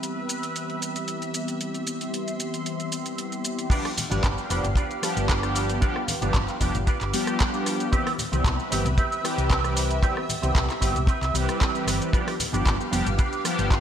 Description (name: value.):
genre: nu-disco, nu disco.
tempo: 114 BPM.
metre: 4/4.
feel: straight.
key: G mixolydian.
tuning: A4 = 435 Hz.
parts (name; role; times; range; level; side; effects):
mellow synth brass; accompaniment; 0.0-13.8 s; E3 to B4; -28 LUFS; equal; chorus, phaser, cassette tape, sidechain pumping, ping-pong delay.
lush unison pad; sustained chords; 0.0-13.8 s; B3 to C6; -34 LUFS; equal; chorus, phaser, sidechain pumping.
pop drum kit; drums; 0.0-13.8 s; crash cymbal, handclaps, hi-hat, rim click, shaker; -30 LUFS; equal; none.
electric guitar with an envelope filter; riff; 3.7-13.8 s; C4 to B4; -31 LUFS; right 4 dB; ensemble chorus, ping-pong delay.
kick drum; drums; 3.7-13.8 s; none; -23 LUFS; equal; none.
congas; percussion; 4.0-13.2 s; none; -36 LUFS; left 3 dB; none.
hollow-body short-scale fingered electric bass; bass; 4.1-13.8 s; F1 to C2; -27 LUFS; equal; none.
room: light reverb, small room reverb.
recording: bright 1980s-style digital production.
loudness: -23 LUFS.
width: side -9 dB against mid.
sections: 0.0-3.7 A section; 3.7-13.8 B section.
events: drop 3.7-13.8.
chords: 0.0 Cmaj7; 3.7 G7; 7.9 Cmaj7; 12.1 G7.